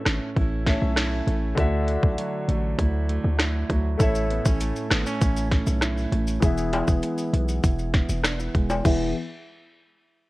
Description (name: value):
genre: dancehall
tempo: 99 BPM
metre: 4/4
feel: straight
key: E mixolydian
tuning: A4 = 441 Hz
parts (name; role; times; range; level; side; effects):
- warm concert grand piano; accompaniment; 0.0-9.1 s; D3 to E5; -30 LUFS; left 2 dB; low-pass filter
- fingerpicked plugged-in steel-string acoustic guitar; arpeggios; 0.0-9.1 s; A2 to E4; -30 LUFS; right 3 dB; low-pass filter
- hard-hitting 808-style bass; bass; 0.1-9.1 s; E1 to D2; -25 LUFS; equal; none
- island pop drum kit; drums; 0.1-9.0 s; crash cymbal, hi-hat, kick drum, rim click, snare drum; -24 LUFS; equal; none
- maracas and timbales; percussion; 4.0-9.1 s; none; -33 LUFS; left 2 dB; none
room: studio reverb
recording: worn, warbling old tape, cassette tape, warbly pitch drift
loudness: -21 LUFS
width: side -19 dB against mid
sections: 0.0-8.8 A section; 8.8-10.3 B section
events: filter sweep 0.0-8.8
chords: 0.0 A; 1.6 Dadd9; 4.0 A; 6.4 E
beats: 0.36 0.97 | 1.58 2.18 2.79 3.40 | 4.00 4.61 5.21 5.82 | 6.42 7.03 7.64 8.24 | 8.85